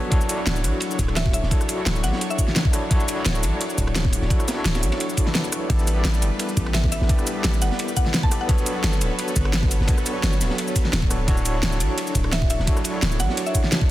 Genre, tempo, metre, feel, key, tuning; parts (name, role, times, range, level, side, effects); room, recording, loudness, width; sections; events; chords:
liquid drum and bass; 172 BPM; 4/4; straight; D major; A4 = 440 Hz
overdriven tine electric piano; accompaniment; 0.0-13.9 s; B3 to D5; -28 LUFS; left 1 dB; medium tremolo, vintage 12-bit sampler grit, tape echo
lush unison pad; sustained chords; 0.0-13.9 s; F#3 to C#5; -30 LUFS; equal; chorus, sidechain pumping
crunchy breakbeat drum kit; drums; 0.1-13.8 s; ride cymbal, snare drum; -32 LUFS; equal; high-pass filter on cymbals, studio reverb, high-pass filter on snare, high-pass filter on room
electronic kick drum; drums; 0.1-13.9 s; -21 LUFS; equal; studio reverb
pop drum kit; drums; 0.1-13.8 s; cabasa, hi-hat, ride cymbal, rim click, snare drum; -26 LUFS; equal; studio reverb
long sustained 808-style bass; bass; 0.5-13.3 s; D1 to A1; -23 LUFS; equal
mallet-like synth pluck; melody; 1.2-2.6, 6.7-8.5, 12.3-13.7 s; E5 to A5; -32 LUFS; equal; chorus, tape echo
little or no reverb; dense, heavily limited modern master, faint mains hum; -19 LUFS; side -15 dB against mid
0.0-13.9 A section
kick drops out 5.4-5.7
0.1 Dmaj7; 5.7 A9sus4; 8.5 Gmaj9#11; 11.3 Dmaj7